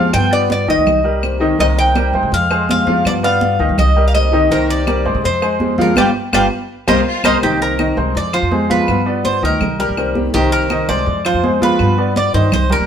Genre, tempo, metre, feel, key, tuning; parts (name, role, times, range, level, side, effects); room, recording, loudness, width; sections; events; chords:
latin, Cuban son and guajira; 165 BPM; 4/4; straight; C minor; A4 = 442 Hz
Cuban tres; melody; 0.0-12.9 s; G4 to G5; -17 LUFS; equal
flamenco guitar; accompaniment; 0.0-12.6 s; C3 to G4; -21 LUFS; left 2 dB
clear baby grand piano; arpeggios; 0.0-12.9 s; Eb3 to F5; -19 LUFS; equal
upright bass; bass; 0.0-12.9 s; G1 to G3; -19 LUFS; equal
claves; percussion; 0.1-12.7 s; -26 LUFS; left 2 dB
congas; percussion; 0.1-12.9 s; -22 LUFS; right 3 dB
clear studio violin section; second line; 6.9-7.3 s; Eb4 to F4; -24 LUFS; equal
moderate stone room reverb, RT60 1.1 s; band playing live in one room; -13 LUFS; side -8 dB against mid
0.0-7.4 A section; 7.4-12.9 B section
band accent 6.0-7.4
0.1 G7; 0.9 Cm7; 2.3 Fmadd9; 3.0 G7; 3.8 Cm7; 5.2 Fmadd9; 6.0 G7; 6.7 Cm7; 8.2 Fmadd9; 8.9 G7; 9.6 Cm7; 11.1 Fmadd9; 11.8 G7